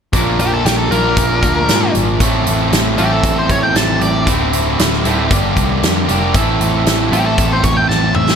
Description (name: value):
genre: blues rock power trio and southern rock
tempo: 116 BPM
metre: 4/4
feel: straight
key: unclear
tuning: A4 = 440 Hz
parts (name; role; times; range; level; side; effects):
- fuzz guitar; riff; 0.1-8.4 s; D2 to Bb4; -16 LUFS; right 1 dB; distortion
- vintage muted picked electric bass; bass; 0.1-8.4 s; D1 to Ab2; -19 LUFS; equal; none
- big rock drum kit; drums; 0.1-8.4 s; hi-hat, kick drum, snare drum, toms; -17 LUFS; equal; none
- octave-fuzz lead guitar; melody; 0.4-8.4 s; G4 to A5; -18 LUFS; left 1 dB; distortion
room: light reverb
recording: none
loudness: -12 LUFS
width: side -7 dB against mid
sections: 0.1-8.4 A section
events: drum fill 7.9-8.4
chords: 0.1 Bb7; 2.2 Am; 4.3 Dsus2; 5.3 Gm7; 6.3 Am